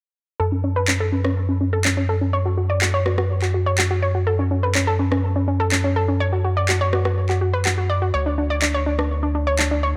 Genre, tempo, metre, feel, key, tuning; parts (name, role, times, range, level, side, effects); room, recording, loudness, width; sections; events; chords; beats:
progressive house; 124 BPM; 4/4; straight; F# minor; A4 = 441 Hz
analog pluck; arpeggios; 0.4-9.9 s; C#4 to D5; -25 LUFS; equal; chorus, dub echo
round analog bass; bass; 0.4-10.0 s; D2 to F#2; -24 LUFS; equal
electronic handclaps and rim click; drums; 0.9-9.7 s; -26 LUFS; equal; overdrive
light reverb; dark, warm production; -20 LUFS; mono
0.4-10.0 A section
filter sweep on synth pluck 0.4-10.0
0.4 F#5; 8.1 N.C.
| 0.40 0.88 1.36 1.85 | 2.33 2.82 3.30 3.78 | 4.27 4.75 5.24 5.72 | 6.20 6.69 7.17 7.66 | 8.14 8.62 9.11 9.59